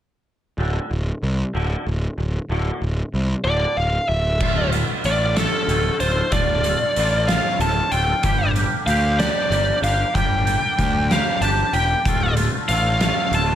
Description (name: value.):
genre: quiet-loud alternative rock.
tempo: 63 BPM (dotted quarters).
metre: 6/8.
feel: straight.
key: D minor.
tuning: A4 = 440 Hz.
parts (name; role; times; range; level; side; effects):
twangy electric guitar; arpeggios; 0.6-13.6 s; D2 to G4; -25 LUFS; right 1 dB; ensemble chorus.
fuzz picked electric bass; bass; 0.6-13.5 s; D1 to D2; -22 LUFS; equal; overdrive.
bluesy overdriven lead guitar; melody; 3.4-13.6 s; A4 to A5; -21 LUFS; left 1 dB; distortion, slapback echo.
oversized low-tuned drum kit; drums; 4.4-13.5 s; crash cymbal, hi-hat, kick drum, snare drum; -24 LUFS; equal; none.
room: light reverb.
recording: none.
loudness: -18 LUFS.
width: side -10 dB against mid.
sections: 0.6-4.4 A section; 4.4-13.6 B section.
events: none.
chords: 0.6 D5; 4.4 Dm; 8.2 Gm; 12.1 Dm.